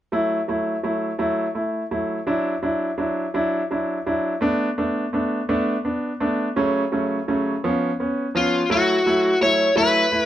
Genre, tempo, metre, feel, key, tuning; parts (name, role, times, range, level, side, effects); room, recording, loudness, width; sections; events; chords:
pop; 56 BPM (dotted quarters); 6/8; straight; F# minor; A4 = 441 Hz
bright concert grand piano; accompaniment; 0.1-10.3 s; C#3 to E4; -21 LUFS; right 1 dB
overdriven slide guitar; melody; 8.4-10.3 s; E#4 to C#5; -18 LUFS; left 2 dB
moderate studio reverb, RT60 0.6 s; band playing live in one room; -20 LUFS; side -12 dB against mid
0.1-8.7 A section; 8.7-10.3 B section
0.1 F#m7; 2.3 Dadd9/F#; 4.4 Bm7; 6.6 F#m/C#; 7.6 C#7; 8.7 F#m7